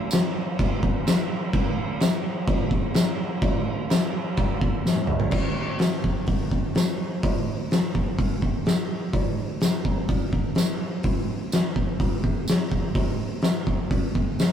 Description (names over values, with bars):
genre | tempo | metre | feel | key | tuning
rock | 126 BPM | 4/4 | straight | none | none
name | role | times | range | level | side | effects
oversized low-tuned drum kit | drums | 0.1-14.5 s | crash cymbal, hi-hat, kick drum, snare drum, toms | -22 LUFS | equal | none
tambourine | percussion | 0.1-14.5 s | none | -34 LUFS | right 3 dB | none
room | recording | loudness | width
little or no reverb | rough rehearsal-room recording, warm saturation | -22 LUFS | side -9 dB against mid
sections
0.0-5.3 A section; 5.3-14.5 B section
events
drum fill 4.9-5.3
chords
none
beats
0.11 0.58 1.06 | 1.53 2.01 2.48 2.96 | 3.43 3.91 4.38 4.86 | 5.33 5.81 6.28 6.76 | 7.24 7.71 8.19 8.67 | 9.14 9.62 10.10 10.58 | 11.05 11.53 12.01 12.49 | 12.97 13.45 13.92 14.40